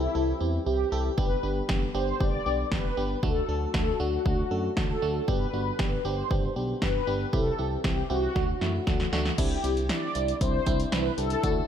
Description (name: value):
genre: synth-pop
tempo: 117 BPM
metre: 4/4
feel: straight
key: unclear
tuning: A4 = 441 Hz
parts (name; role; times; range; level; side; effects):
- mellow synth brass; melody; 0.0-11.7 s; E4 to D5; -30 LUFS; left 1 dB; chorus, tape echo
- FM electric piano; accompaniment; 0.0-11.6 s; A3 to A4; -32 LUFS; right 2 dB; chorus
- mellow French horn section; sustained chords; 0.0-11.7 s; B2 to G4; -37 LUFS; left 2 dB; none
- smooth synth bass; bass; 0.0-11.6 s; G1 to F#2; -31 LUFS; equal; none
- punchy analog drum machine; drums; 1.2-11.6 s; crash cymbal, hi-hat, kick drum, snare drum; -29 LUFS; equal; none
room: light reverb, digital ambience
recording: none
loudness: -25 LUFS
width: side -9 dB against mid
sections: 0.0-9.4 A section; 9.4-11.7 B section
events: drum fill 8.4-9.4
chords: 0.0 C; 1.2 G; 3.2 D; 5.3 G; 7.3 C; 8.4 D; 9.4 Cadd9